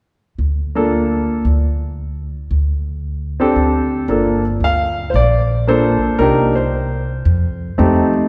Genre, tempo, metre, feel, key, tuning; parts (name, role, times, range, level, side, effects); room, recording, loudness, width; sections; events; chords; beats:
jazz piano trio; 114 BPM; 4/4; swing 69% on 8ths; G minor; A4 = 436 Hz
upright bass; bass; 0.4-8.3 s; G1 to F2; -20 LUFS; equal
warm baby grand piano; melody; 0.8-8.3 s; A3 to F5; -18 LUFS; equal
wet concert hall reverb, RT60 1.9 s; recorded in a church or concert hall; -17 LUFS; mono
0.0-4.1 A section; 4.1-8.3 B section
0.0 Dm; 4.1 Gm9; 6.2 Cm9; 7.2 F7
0.39 0.92 1.45 | 1.97 2.50 3.03 3.55 | 4.08 4.61 5.13 5.66 | 6.19 6.72 7.24 7.77